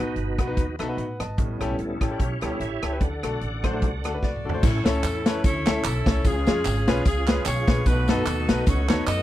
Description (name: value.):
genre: uptempo gospel.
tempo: 148 BPM.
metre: 4/4.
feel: swing 56% on 8ths.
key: A major from 4.6 s.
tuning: A4 = 440 Hz.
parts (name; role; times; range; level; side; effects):
bright concert grand piano; accompaniment; 0.0-9.0 s; A2 to A5; -29 LUFS; left 2 dB; none.
bright tonewheel organ; sustained chords; 0.0-9.2 s; F#3 to F#5; -32 LUFS; right 2 dB; slow rotary speaker, chorus vibrato.
upright bass; bass; 0.0-9.2 s; G1 to A2; -27 LUFS; equal; none.
warm soul drum kit; drums; 0.2-9.2 s; crash cymbal, hi-hat, kick drum, rim click, snare drum, toms; -23 LUFS; equal; none.
bright saxophone section; melody; 4.2-9.2 s; C#4 to D#5; -29 LUFS; left 1 dB; none.
tambourine and handclaps; percussion; 4.6-9.2 s; none; -34 LUFS; right 6 dB; none.
room: small room reverb.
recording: none.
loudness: -21 LUFS.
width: side -14 dB against mid.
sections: 0.0-4.6 A section; 4.6-9.2 B section.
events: tonewheel organ solo 0.0-4.6; grand piano fill 0.6-1.4; drum fill 4.2-4.6.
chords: 0.0 B; 1.4 A7; 3.0 D; 4.6 A; 6.2 C#; 7.9 B7.